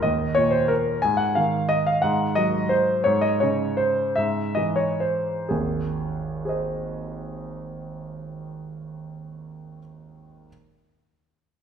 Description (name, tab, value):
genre	classical, piano waltz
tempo	120-188 BPM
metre	3/4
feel	rubato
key	Ab major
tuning	A4 = 440 Hz
part	clear grand piano	solo	0.0-10.5 s	Ab1 to Ab5	-22 LUFS	equal	none
room	wet recital hall reverb, RT60 1.5 s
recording	minimal, uncompressed stereo recording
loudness	-21 LUFS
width	side -7 dB against mid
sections	0.0-5.5 A section; 5.5-8.3 B section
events	slowing down 2.5-5.5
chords	0.0 Eb5; 1.0 Ab7; 3.1 Dbm/Ab; 5.5 Ab